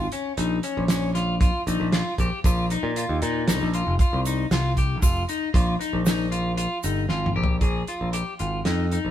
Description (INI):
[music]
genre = progressive instrumental, band music in an uneven meter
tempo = 116 BPM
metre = 5/4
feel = straight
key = Bb dorian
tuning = A4 = 440 Hz
[part]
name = electric guitar at the edge of break-up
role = arpeggios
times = 0.0-9.1 s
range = Db4 to Ab4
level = -27 LUFS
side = left 3 dB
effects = none
[part]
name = modern bright picked electric bass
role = bass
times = 0.0-9.1 s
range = F1 to Bb2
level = -25 LUFS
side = equal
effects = none
[part]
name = damped 70s drum kit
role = drums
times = 0.1-9.0 s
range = hi-hat, kick drum, snare drum, toms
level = -24 LUFS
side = right 1 dB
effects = none
[part]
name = tube shaker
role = percussion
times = 0.9-7.1 s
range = none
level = -38 LUFS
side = right 5 dB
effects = none
[sound]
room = light reverb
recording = band playing live in one room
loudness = -21 LUFS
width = side -11 dB against mid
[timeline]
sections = 0.0-7.6 A section; 7.6-9.1 B section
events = drum fill 7.1-7.6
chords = 0.0 Bbm; 2.4 Ab (rootless); 7.6 Bb7(no3)